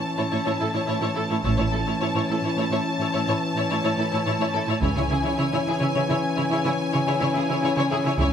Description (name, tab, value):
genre	cinematic, epic orchestral film score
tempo	71 BPM (dotted quarters)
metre	12/8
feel	straight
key	unclear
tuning	A4 = 440 Hz
part	clear symphonic violin section	melody	0.0-8.3 s	G#5 to A5	-28 LUFS	left 2 dB	none
part	mellow French horn section	sustained chords	0.0-8.3 s	E3 to C#4	-27 LUFS	left 2 dB	none
part	rich studio violin section	second line	0.2-8.2 s	G#4 to C#5	-30 LUFS	left 4 dB	none
part	rich symphonic viola section	accompaniment	0.2-8.2 s	E4	-30 LUFS	right 2 dB	none
part	rich symphonic cello section	bass	0.2-8.2 s	A2 to C#3	-28 LUFS	right 3 dB	none
part	rich symphonic double bass section	bass	1.4-8.3 s	A1 to C#2	-26 LUFS	right 2 dB	none
part	taiko ensemble	drums	4.8-5.9 s	none	-31 LUFS	equal	none
room	moderate scoring stage reverb, RT60 1.6 s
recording	none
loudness	-21 LUFS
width	side -8 dB against mid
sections	0.0-8.3 A section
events	build-up 0.0-8.3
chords	0.0 A; 4.8 C#m